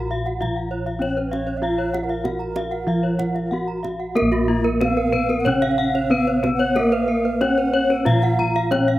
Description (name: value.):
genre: Balinese gamelan.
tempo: 92-101 BPM.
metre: 4/4.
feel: straight.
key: Bb pelog.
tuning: A4 = 440 Hz.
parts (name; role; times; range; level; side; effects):
gamelan-type bronze metallophone; melody; 0.0-9.0 s; Bb3 to Gb4-20c; -23 LUFS; left 1 dB; none.
breathy bright low xiao; second line; 0.0-9.0 s; Bb4 to Gb5; -28 LUFS; right 4 dB; slapback echo.
gamelan-type bronze metallophone; accompaniment; 0.0-9.0 s; Db3-30c to Bb3; -31 LUFS; right 3 dB; none.
gamelan-type bronze metallophone; arpeggios; 0.0-9.0 s; Gb4-20c to Bb5; -28 LUFS; right 5 dB; slapback echo.
gamelan-type bossed gongs; bass; 0.0-9.0 s; Bb1 to Bb4; -26 LUFS; equal; none.
gamelan-type bronze metallophone; arpeggios; 0.1-8.9 s; F4-30c to Bb5; -24 LUFS; left 4 dB; slapback echo.
kendang; percussion; 0.3-8.9 s; none; -32 LUFS; right 3 dB; slapback echo.
room: little or no reverb.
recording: recorded outdoors, with no room sound.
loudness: -18 LUFS.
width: side -15 dB against mid.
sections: 0.0-4.2 A section; 4.2-9.0 B section.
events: none.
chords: none.